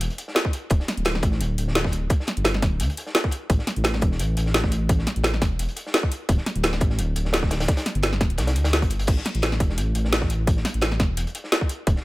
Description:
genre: liquid drum and bass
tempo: 172 BPM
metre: 4/4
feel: straight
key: A minor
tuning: A4 = 440 Hz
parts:
  - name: dark detuned saw bass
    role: bass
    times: 0.0-12.0 s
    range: D1 to D2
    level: -24 LUFS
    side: equal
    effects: none
  - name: crunchy breakbeat drum kit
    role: drums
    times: 0.0-12.0 s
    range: hi-hat, snare drum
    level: -32 LUFS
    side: equal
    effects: high-pass filter on hats, high-pass filter on snare, high-pass filter on room
  - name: garage drum kit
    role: drums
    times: 0.0-11.9 s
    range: crash cymbal, hi-hat, snare drum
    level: -24 LUFS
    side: equal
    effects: none
  - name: electronic kick drum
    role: drums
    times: 0.4-11.9 s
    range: none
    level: -22 LUFS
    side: equal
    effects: overdrive
room: small room ambience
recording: none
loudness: -20 LUFS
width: side -19 dB against mid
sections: 0.0-12.0 A section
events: none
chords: none

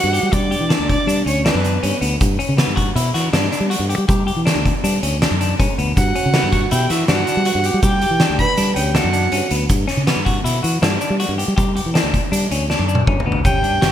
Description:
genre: progressive instrumental, band music in an uneven meter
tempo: 160 BPM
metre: 5/4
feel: straight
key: G lydian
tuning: A4 = 439 Hz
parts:
  - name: warm violin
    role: melody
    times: 0.0-2.0, 6.0-9.5, 13.4-13.9 s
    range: B4 to B5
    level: -21 LUFS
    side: right 1 dB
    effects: none
  - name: vibraphone with soft mallets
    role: second line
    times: 0.0-2.0, 6.0-9.5, 13.4-13.9 s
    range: B3 to B4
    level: -25 LUFS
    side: right 3 dB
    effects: none
  - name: clean electric guitar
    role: arpeggios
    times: 0.0-13.9 s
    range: B3 to G4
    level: -24 LUFS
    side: left 4 dB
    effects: spring reverb, ping-pong delay
  - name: fingered electric bass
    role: bass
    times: 0.0-13.9 s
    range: G1 to G3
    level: -20 LUFS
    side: equal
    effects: none
  - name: oversized low-tuned drum kit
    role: drums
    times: 0.1-13.9 s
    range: hi-hat, kick drum, snare drum, toms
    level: -19 LUFS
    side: equal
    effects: gated reverb
  - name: tube shaker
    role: percussion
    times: 0.1-13.6 s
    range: none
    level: -35 LUFS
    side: right 6 dB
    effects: none
room: light reverb, small room reverb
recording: bright 1980s-style digital production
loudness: -15 LUFS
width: side -10 dB against mid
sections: 0.0-13.4 A section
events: drum fill 12.7-13.4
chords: 0.0 Gmaj7(no3)

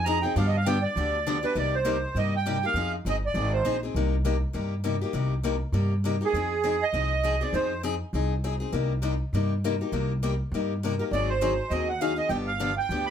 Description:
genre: acoustic string swing (jazz manouche)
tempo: 201 BPM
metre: 4/4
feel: swing 57% on 8ths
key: C minor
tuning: A4 = 441 Hz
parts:
  - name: accordion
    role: melody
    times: 0.0-3.8, 6.2-7.8, 11.0-13.1 s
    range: Ab4 to B5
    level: -27 LUFS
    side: right 5 dB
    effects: light tremolo tuning
  - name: upright bass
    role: bass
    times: 0.0-13.1 s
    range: G1 to G2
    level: -28 LUFS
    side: equal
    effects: none
  - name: picked steel-string acoustic guitar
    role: accompaniment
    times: 0.1-13.1 s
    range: C3 to Ab4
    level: -30 LUFS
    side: left 5 dB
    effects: none
room: light reverb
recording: none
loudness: -24 LUFS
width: side -9 dB against mid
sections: 0.0-1.6 A section; 1.6-13.1 B section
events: accordion solo 0.0-1.6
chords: 0.4 G7; 1.6 Cm7; 2.8 Fm7; 3.9 Cm7; 6.3 Fm7; 8.7 Cm7; 11.1 Ab7; 12.3 G7

